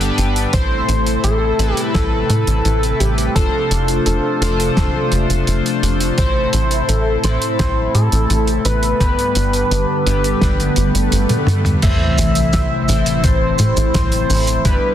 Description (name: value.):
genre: synthwave.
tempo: 85 BPM.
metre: 4/4.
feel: straight.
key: A minor.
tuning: A4 = 440 Hz.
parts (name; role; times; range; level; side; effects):
wide unison lead; melody; 0.0-14.9 s; G4 to E5; -21 LUFS; equal; cassette tape, tape echo.
phased analog pad; sustained chords; 0.0-14.9 s; C3 to A4; -22 LUFS; equal; phaser, chorus, sidechain pumping.
chorused polysynth; stabs; 0.0-14.9 s; G2 to C5; -23 LUFS; left 3 dB; tape echo.
tight sequencer bass; bass; 0.0-14.8 s; F1 to A2; -18 LUFS; equal; sidechain pumping.
cloth-damped thuddy drum kit; drums; 0.0-14.8 s; crash cymbal, hi-hat, shaker, snare drum, toms; -22 LUFS; right 1 dB; none.
electronic kick drum; drums; 0.5-14.8 s; none; -19 LUFS; equal; none.
swell and sub drop; sound effects; 10.8-14.7 s; none; -24 LUFS; equal; none.
room: moderate recital hall reverb, RT60 1.7 s, small room ambience.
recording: dense, heavily limited modern master.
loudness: -14 LUFS.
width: side -10 dB against mid.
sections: 0.0-11.8 A section; 11.8-14.9 B section.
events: swell 10.8-11.8; drum fill 11.3-11.8; impact 11.8-14.7.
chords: 0.0 G; 0.5 Amadd9; 3.4 F6; 6.2 Am; 9.0 G; 11.8 Am.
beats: | 0.53 1.24 1.95 2.65 | 3.36 4.06 4.77 5.47 | 6.18 6.89 7.59 8.30 | 9.00 9.71 10.42 11.12 | 11.83 12.53 13.24 13.95 | 14.65.